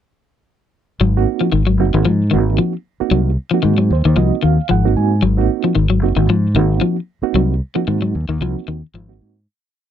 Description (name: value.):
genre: afrobeat.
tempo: 113 BPM.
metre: 4/4.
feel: swing 54% on 16ths.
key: Ab mixolydian.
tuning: A4 = 440 Hz.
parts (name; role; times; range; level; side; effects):
electric guitar at the edge of break-up; arpeggios; 1.0-9.1 s; Eb3 to Gb3; -18 LUFS; left 6 dB; none.
fingered electric bass; bass; 1.0-9.5 s; Gb1 to Ab2; -16 LUFS; equal; none.
reed electric piano; accompaniment; 1.2-9.4 s; Bb3 to Ab5; -20 LUFS; right 18 dB; fast tremolo.
room: little or no reverb.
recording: dry, close 1970s-style studio recording.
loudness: -14 LUFS.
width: side -10 dB against mid.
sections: 1.0-9.5 groove.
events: reed electric piano fill 3.6-5.2; fade-out 7.4-9.5.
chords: 1.0 Ab9.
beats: | 1.00 1.53 2.06 2.59 | 3.12 3.64 4.17 4.70 | 5.23 5.76 6.29 6.82 | 7.36 7.88 8.41 8.94.